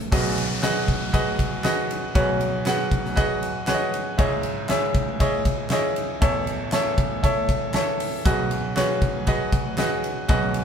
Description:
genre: piano-driven pop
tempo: 118 BPM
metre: 4/4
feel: straight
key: unclear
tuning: A4 = 443 Hz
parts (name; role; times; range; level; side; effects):
- bright baby grand piano; accompaniment; 0.0-10.6 s; A1 to F#5; -23 LUFS; equal; none
- huge arena drum kit; drums; 0.0-10.6 s; crash cymbal, handclaps, hi-hat, kick drum, ride cymbal, snare drum; -24 LUFS; equal; none
- downlifter; sound effects; 0.1-4.2 s; none; -34 LUFS; left 2 dB; none
room: moderate studio reverb, RT60 0.8 s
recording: band playing live in one room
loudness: -20 LUFS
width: side -7 dB against mid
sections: 0.1-10.6 A section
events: none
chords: 0.1 B6; 4.2 C#madd9; 6.2 A; 8.3 B6

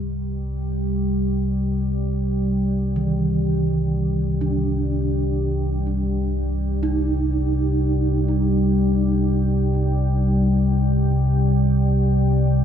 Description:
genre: dark ambient drone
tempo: free time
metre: none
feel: none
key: C minor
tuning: A4 = 440 Hz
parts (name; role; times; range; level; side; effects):
- deep dark ambient pad; sustained chords; 0.0-12.6 s; G3 to G5; -23 LUFS; left 1 dB; chorus, built-in reverb
- deep rumbling drone; drone; 0.0-12.6 s; C2 to C3; -21 LUFS; equal; built-in reverb
- gamelan-type bronze metallophone; arpeggios; 3.0-12.6 s; Eb3 to Eb4; -26 LUFS; right 3 dB; tape echo
room: wet huge ambient reverb, RT60 8.4 s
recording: nothing above 11.0 kHz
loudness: -18 LUFS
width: side -8 dB against mid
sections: 0.0-12.6 A section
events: none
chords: 0.0 Cm

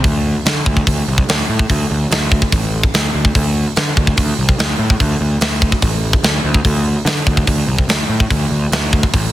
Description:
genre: heavy metal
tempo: 145 BPM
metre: 4/4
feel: straight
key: unclear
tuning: A4 = 441 Hz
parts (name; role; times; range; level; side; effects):
- fuzz picked electric bass; bass; 0.0-9.3 s; A1 to D3; -17 LUFS; equal; overdrive
- tight metal drum kit; drums; 0.0-9.2 s; hi-hat, kick drum, snare drum; -15 LUFS; equal; none
room: little or no reverb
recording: dense, heavily limited modern master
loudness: -13 LUFS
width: side -14 dB against mid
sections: 0.0-9.3 A section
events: none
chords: none

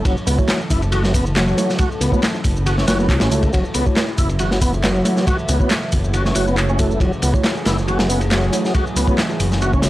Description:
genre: breakbeat, breaks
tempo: 138 BPM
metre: 4/4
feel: swing 54% on 16ths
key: F# minor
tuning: A4 = 440 Hz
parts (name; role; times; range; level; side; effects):
- phased analog pad; sustained chords; 0.0-9.9 s; C#3 to A4; -27 LUFS; equal; phaser, chorus, sidechain pumping
- overdriven tonewheel organ; riff; 0.0-9.8 s; F#3 to F#4; -22 LUFS; equal; chorus vibrato, slow rotary speaker, vintage 12-bit sampler grit, analog delay
- dark detuned saw bass; bass; 0.0-9.9 s; F#1 to C#2; -20 LUFS; equal; none
- crunchy breakbeat drum kit; drums; 0.1-9.9 s; kick drum, ride cymbal, snare drum; -20 LUFS; equal; none
- punchy analog drum machine; drums; 0.1-9.9 s; handclaps, hi-hat, shaker; -26 LUFS; equal; none
- bongos and congas; percussion; 0.1-9.8 s; none; -31 LUFS; right 2 dB; none
- mellow tine electric piano; stabs; 0.4-9.9 s; A3 to C#5; -26 LUFS; right 1 dB; medium stereo tremolo, analog delay
room: studio ambience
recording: dry, gritty hardware recording, cassette tape, lossy compression artefacts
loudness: -15 LUFS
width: side -16 dB against mid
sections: 0.0-9.9 A section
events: none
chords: 0.0 F#m7

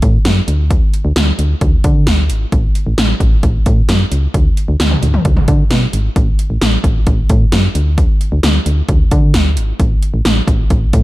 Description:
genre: synth-pop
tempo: 132 BPM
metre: 4/4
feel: straight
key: unclear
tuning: A4 = 441 Hz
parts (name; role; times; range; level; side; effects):
- solid FM bass; bass; 0.0-11.0 s; G#1 to D3; -14 LUFS; equal; none
- 80s electronic pad drums; drums; 0.0-11.0 s; hi-hat, kick drum, snare drum, toms; -13 LUFS; equal; gated reverb on snare and toms, overdrive
room: little or no reverb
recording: dark, warm production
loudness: -11 LUFS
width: side -17 dB against mid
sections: 0.0-11.0 A section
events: none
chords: none

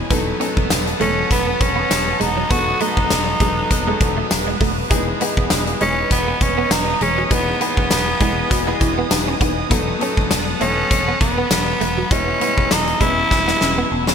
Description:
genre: 1980s-style pop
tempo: 100 BPM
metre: 4/4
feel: swing 55% on 16ths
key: E major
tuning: A4 = 436 Hz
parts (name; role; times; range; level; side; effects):
- folk marimba with medium mallets; second line; 0.0-0.8, 8.2-14.1 s; B3 to F#4; -28 LUFS; left 2 dB; ping-pong delay
- clear concert grand piano; accompaniment; 0.0-14.1 s; E3 to D#5; -26 LUFS; left 3 dB; none
- distorted electric guitar; accompaniment; 0.0-14.1 s; E2 to B3; -29 LUFS; equal; overdrive, wide subtle chorus
- phased analog pad; sustained chords; 0.0-14.1 s; B4 to E6; -26 LUFS; right 2 dB; phaser, chorus
- fretless electric bass; bass; 0.0-14.1 s; E1; -25 LUFS; equal; none
- direct-recorded clean electric guitar; riff; 0.1-14.1 s; F#3 to C#4; -27 LUFS; right 4 dB; ensemble chorus, ping-pong delay
- huge arena drum kit; drums; 0.1-14.1 s; hi-hat, kick drum, snare drum, tambourine; -20 LUFS; equal; gated reverb
- raspy tenor saxophone; melody; 1.0-14.1 s; B3 to F#4; -21 LUFS; equal; none
room: moderate lush hall reverb, RT60 2.6 s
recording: bright 1980s-style digital production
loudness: -15 LUFS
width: side -7 dB against mid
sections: 0.0-14.1 A section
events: drum fill 13.3-14.1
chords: 0.1 B7/E; 4.9 Emaj7; 9.7 B7/E; 12.1 E

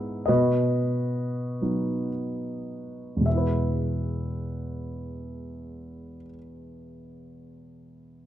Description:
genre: classical, lyrical solo piano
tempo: 33-50 BPM (dotted quarters)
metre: 6/8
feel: rubato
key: E major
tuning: A4 = 440 Hz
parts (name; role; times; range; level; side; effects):
- dark concert grand piano; solo; 0.0-8.3 s; E2 to E5; -26 LUFS; equal; none
room: moderate scoring stage reverb, RT60 1.8 s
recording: dark, warm production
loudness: -24 LUFS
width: side -12 dB against mid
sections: 0.0-3.3 A section; 3.3-6.8 B section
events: slowing down 0.0-3.3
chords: 0.3 B; 3.3 E

